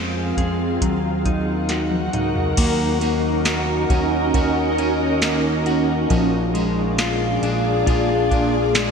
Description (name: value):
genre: dream pop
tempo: 68 BPM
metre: 4/4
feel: straight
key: Eb dorian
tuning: A4 = 440 Hz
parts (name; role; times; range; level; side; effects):
- ethereal airy pad; sustained chords; 0.0-8.9 s; Bb3 to Gb5; -21 LUFS; right 1 dB; ensemble chorus, built-in reverb, shimmer reverb
- mellow electric guitar; arpeggios; 0.0-8.9 s; F3 to Ab4; -23 LUFS; left 2 dB; analog chorus, ping-pong delay, shimmer reverb
- fat analog bass; bass; 0.0-8.9 s; Bb1 to F2; -26 LUFS; equal; none
- soft vintage rhythm box; drums; 0.4-8.9 s; crash cymbal, hi-hat, kick drum, ride cymbal, snare drum, tambourine, toms; -23 LUFS; equal; gated reverb
- drifting glass-harmonics texture; texture; 3.7-4.8 s; Gb4 to Bb4; -36 LUFS; right 1 dB; none
room: wet lush hall reverb, RT60 2.7 s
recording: bright 1980s-style digital production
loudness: -17 LUFS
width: side -6 dB against mid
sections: 0.0-2.6 A section; 2.6-8.9 B section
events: drum fill 1.7-2.6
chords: 0.0 Fm; 0.8 Ebm; 2.6 Ebm7; 6.1 Bb7